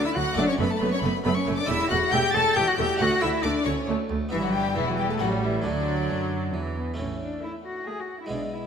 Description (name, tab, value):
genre	classical, baroque-style concerto movement with solo episodes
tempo	136 BPM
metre	3/4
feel	straight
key	D major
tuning	A4 = 441 Hz
part	dark cello	melody	0.0-8.7 s	D3 to A4	-27 LUFS	left 2 dB	none
part	warm chamber violin section	melody	0.0-8.6 s	B4 to A6	-32 LUFS	left 2 dB	none
part	warm chamber violin section	second line	0.0-8.2 s	D4 to A5	-30 LUFS	left 3 dB	none
part	harpsichord	accompaniment	0.0-8.7 s	D2 to G4	-35 LUFS	right 1 dB	none
part	rich chamber viola section	accompaniment	0.1-8.2 s	E3 to A3	-32 LUFS	equal	none
part	warm chamber double bass section	bass	0.2-8.7 s	E1 to F#2	-32 LUFS	right 4 dB	none
part	warm studio cello section	bass	0.2-8.7 s	D2 to F#3	-31 LUFS	right 4 dB	none
room	moderate concert hall reverb, RT60 1.8 s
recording	none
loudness	-22 LUFS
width	side -7 dB against mid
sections	0.0-7.0 A section; 7.0-8.7 B section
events	none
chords	0.4 D/F#; 1.7 A7/E; 3.0 D; 4.3 Em/G; 5.2 A7; 5.6 D; 7.0 A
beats	| 0.37 0.81 1.25 | 1.69 2.12 2.56 | 3.00 3.44 3.88 | 4.32 4.76 5.20 | 5.65 6.09 6.54 | 6.99 7.43 7.87 | 8.31